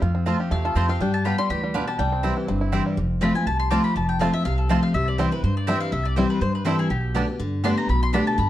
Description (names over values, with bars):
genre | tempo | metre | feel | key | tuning
bluegrass | 244 BPM | 4/4 | swing 53% on 8ths | C major | A4 = 437 Hz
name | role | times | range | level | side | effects
bluegrass banjo | melody | 0.0-8.2 s | E3 to G4 | -30 LUFS | right 4 dB | none
picked steel-string acoustic guitar | accompaniment | 0.0-8.5 s | F2 to G4 | -24 LUFS | left 2 dB | none
upright bass | bass | 0.0-8.5 s | F1 to G2 | -25 LUFS | right 1 dB | none
mandolin | stabs | 0.3-8.2 s | B3 to A5 | -30 LUFS | right 4 dB | none
mandolin | melody | 0.5-8.5 s | G4 to D6 | -27 LUFS | left 3 dB | slapback echo
room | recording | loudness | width
light reverb | dark, warm production | -20 LUFS | side -13 dB against mid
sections
0.0-3.0 A section; 3.0-8.5 B section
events
none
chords
0.0 F; 1.0 G7; 2.0 C; 3.0 F; 4.9 C; 6.9 Gadd9/B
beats
| 0.02 0.27 0.51 0.76 | 1.00 1.25 1.50 1.74 | 1.99 2.24 2.48 2.73 | 2.98 3.22 3.47 3.71 | 3.96 4.20 4.45 4.70 | 4.94 5.19 5.43 5.68 | 5.92 6.17 6.42 6.66 | 6.91 7.15 7.40 7.64 | 7.89 8.13 8.38